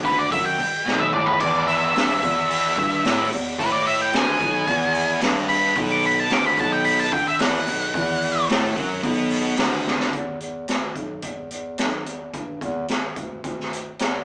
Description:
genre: garage rock duo or trio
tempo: 110 BPM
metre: 4/4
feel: straight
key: unclear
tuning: A4 = 439 Hz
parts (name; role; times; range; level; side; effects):
- thick fuzz guitar; riff; 0.0-10.1 s; E2 to A3; -25 LUFS; equal; distortion
- mellow bass clarinet; bass; 0.0-14.2 s; B1 to A2; -28 LUFS; equal; none
- raw garage drum kit; drums; 0.0-14.1 s; crash cymbal, hi-hat, kick drum, snare drum, toms; -24 LUFS; equal; none
- octave-fuzz lead guitar; melody; 0.1-8.5 s; B4 to D6; -20 LUFS; equal; distortion
room: moderate large studio reverb, RT60 1.2 s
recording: band playing live in one room, small speaker sound, faint mains hum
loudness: -19 LUFS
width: side -37 dB against mid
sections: 0.0-10.1 A section; 10.1-14.2 B section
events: lead electric guitar solo 0.0-10.1; drum fill 0.9-1.4, 9.9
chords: 0.0 B5; 1.4 E; 5.8 B5; 10.1 E5

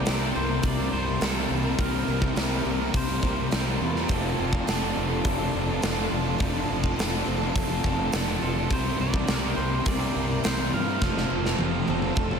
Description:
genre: rock, shoegaze and dream pop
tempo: 104 BPM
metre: 4/4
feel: straight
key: F major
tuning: A4 = 440 Hz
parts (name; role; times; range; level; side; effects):
- electric guitar at the edge of break-up; melody; 0.0-3.8, 8.4-12.4 s; A4 to F5; -35 LUFS; equal; diffuse ambient delay
- string machine, full ensemble; sustained chords; 0.0-12.4 s; Bb3 to E6; -36 LUFS; equal; ensemble chorus
- picked twelve-string acoustic guitar; arpeggios; 0.0-12.4 s; F3 to Bb4; -37 LUFS; equal; none
- crunchy overdriven guitar; riff; 0.0-12.4 s; F2 to C4; -33 LUFS; equal; none
- overdriven electric guitar; riff; 0.0-12.4 s; C3 to Bb4; -32 LUFS; right 7 dB; reverse reverb
- thick fuzz guitar; riff; 0.0-12.4 s; F2 to C4; -32 LUFS; left 8 dB; distortion, wide subtle chorus
- fuzz fingered electric bass; bass; 0.1-12.4 s; F1 to G2; -30 LUFS; equal; overdrive
- huge arena drum kit; drums; 0.1-12.4 s; hi-hat, kick drum, snare drum, toms; -28 LUFS; equal; none
room: moderate huge ambient reverb, RT60 9.0 s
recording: dreamy mix soaked in reverb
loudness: -23 LUFS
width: side -6 dB against mid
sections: 0.0-12.4 A section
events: drum fill 11.0-12.4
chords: 0.0 C7sus4; 4.1 F6; 8.7 C7sus4; 11.0 Fmaj7

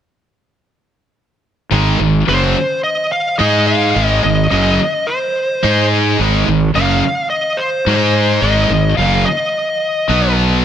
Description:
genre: rock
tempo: 108 BPM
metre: 4/4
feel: straight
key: unclear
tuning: A4 = 441 Hz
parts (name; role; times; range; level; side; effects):
- distorted electric guitar; riff; 1.7-10.6 s; Gb2 to Ab4; -18 LUFS; right 8 dB; overdrive
- scooped high-gain guitar; riff; 1.7-10.6 s; Gb2 to Ab4; -18 LUFS; left 11 dB; distortion
- fuzz fingered electric bass; bass; 1.7-10.6 s; Gb1 to Ab2; -17 LUFS; left 1 dB; overdrive
- smooth overdriven lead guitar; melody; 2.3-10.3 s; C5 to F5; -17 LUFS; equal; none
room: light reverb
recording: bright 1980s-style digital production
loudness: -12 LUFS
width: side -9 dB against mid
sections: 1.7-10.6 A section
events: none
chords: 1.7 Ab; 10.1 B5

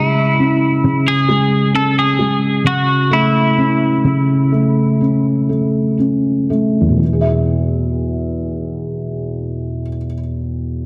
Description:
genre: pop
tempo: 58-68 BPM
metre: 4/4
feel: straight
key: E major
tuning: A4 = 435 Hz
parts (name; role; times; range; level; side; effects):
- twelve-string electric guitar; melody; 0.0-6.0 s; E4 to A4; -20 LUFS; equal; none
- felt-muted upright piano; accompaniment; 0.0-10.9 s; E2 to E5; -17 LUFS; equal; none
room: moderate lush hall reverb, RT60 2.4 s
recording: dense, heavily limited modern master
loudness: -16 LUFS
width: mono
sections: 0.0-7.0 A section; 7.0-10.9 B section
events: slowing down 0.0-7.0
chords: 0.0 C#m; 2.6 A/C#; 7.0 E

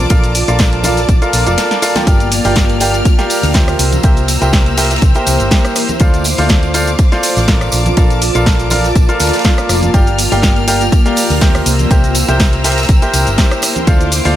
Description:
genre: piano house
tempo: 122 BPM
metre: 4/4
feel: swing 54% on 16ths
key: unclear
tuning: A4 = 442 Hz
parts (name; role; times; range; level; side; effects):
- clear studio string section; sustained chords; 0.0-14.4 s; Bb3 to F6; -23 LUFS; left 2 dB; sidechain pumping
- bright baby grand piano; riff; 0.0-14.4 s; F4 to G5; -17 LUFS; equal; sidechain pumping, low-pass filter, tape echo
- hollow-body short-scale fingered electric bass; bass; 0.0-14.4 s; F1 to D2; -16 LUFS; equal; sidechain pumping
- tambourine and congas; percussion; 0.0-14.3 s; none; -24 LUFS; right 2 dB; none
- granular cloud pad; texture; 0.0-14.4 s; Bb3 to A5; -20 LUFS; right 1 dB; built-in reverb, sidechain pumping
- electronic kick drum; drums; 0.1-14.0 s; none; -11 LUFS; equal; overdrive
- punchy analog drum machine; drums; 0.1-14.3 s; cabasa, hi-hat, rim click, snare drum; -18 LUFS; equal; none
- swinging big-band drum kit; drums; 0.1-14.4 s; hi-hat, ride cymbal, snare drum; -26 LUFS; left 1 dB; none
room: small room ambience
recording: none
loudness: -10 LUFS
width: side -12 dB against mid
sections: 0.0-14.4 A section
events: drum fill 1.6-2.1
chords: 0.0 Bbmaj7; 2.1 Gm7; 3.8 C7; 6.0 Dm7; 7.7 Bbmaj7; 9.9 Gm7; 11.7 C7

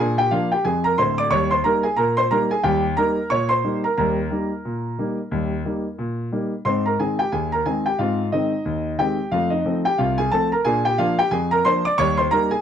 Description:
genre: ragtime piano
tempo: 90 BPM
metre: 2/4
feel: swing 57% on 16ths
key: unclear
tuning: A4 = 440 Hz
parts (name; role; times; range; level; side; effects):
- warm concert grand piano; solo; 0.0-12.6 s; D1 to D6; -19 LUFS; equal; none
room: light reverb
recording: dark, warm production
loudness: -19 LUFS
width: side -8 dB against mid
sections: 0.0-12.6 A section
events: none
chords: 0.0 Bb7; 1.3 Eb7; 4.0 Eb; 6.7 Ab; 9.3 F7; 10.7 Bb7; 12.0 Eb7

